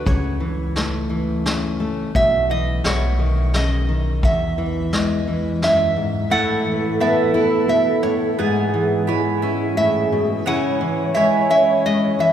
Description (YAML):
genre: acoustic folk duo or small band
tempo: 87 BPM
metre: 3/4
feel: straight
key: E major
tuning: A4 = 440 Hz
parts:
  - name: metal-body resonator slide guitar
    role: melody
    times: 0.0-12.3 s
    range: C#5 to F#5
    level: -21 LUFS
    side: right 1 dB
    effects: none
  - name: fingerpicked steel-string acoustic guitar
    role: accompaniment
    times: 0.0-12.3 s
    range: E2 to G#4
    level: -22 LUFS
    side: left 1 dB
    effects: none
  - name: upright bass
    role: bass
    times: 0.0-6.3 s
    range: B1 to E2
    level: -24 LUFS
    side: equal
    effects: none
  - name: vintage brush drum kit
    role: drums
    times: 0.1-5.8 s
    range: hi-hat, kick drum, snare drum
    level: -25 LUFS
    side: equal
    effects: none
  - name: warm velvety synth lead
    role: second line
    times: 6.3-12.3 s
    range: E4 to C#5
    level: -23 LUFS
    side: right 2 dB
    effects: chorus
  - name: mandolin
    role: arpeggios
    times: 6.3-12.3 s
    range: G#3 to A5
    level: -25 LUFS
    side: right 3 dB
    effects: none
room: wet cathedral reverb, RT60 4.6 s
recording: recorded in a church or concert hall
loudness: -17 LUFS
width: side -9 dB against mid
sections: 0.0-6.3 A section; 6.3-12.3 B section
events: none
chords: 0.1 A/C#; 2.1 Bsus4; 2.8 B; 4.2 E; 6.3 Asus2; 8.4 E6/G#; 10.5 C#m